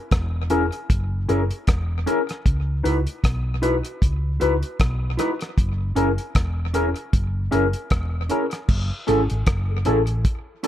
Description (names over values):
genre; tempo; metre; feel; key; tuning
lovers rock reggae; 77 BPM; 4/4; swing 56% on 16ths; unclear; A4 = 445 Hz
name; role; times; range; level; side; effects
hollow-body short-scale fingered electric bass; bass; 0.1-10.2 s; E1 to C#2; -23 LUFS; equal; none
cloth-damped thuddy drum kit; drums; 0.1-10.7 s; crash cymbal, hi-hat, kick drum, rim click; -22 LUFS; equal; tape echo
barky tine electric piano; accompaniment; 0.5-10.7 s; C#4 to B4; -25 LUFS; left 4 dB; overdrive, phaser
mellow electric guitar; stabs; 0.5-10.7 s; C#4 to B4; -25 LUFS; right 2 dB; none
room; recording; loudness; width
light reverb, small room ambience; dark, warm production; -20 LUFS; side -12 dB against mid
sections
0.0-8.7 A section; 8.7-10.7 B section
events
none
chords
0.0 F#7; 2.5 C#m11; 5.6 F#7; 8.7 F#m7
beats
0.12 0.90 1.68 | 2.46 3.23 4.01 4.79 | 5.57 6.35 7.13 7.91 | 8.69 9.47 10.25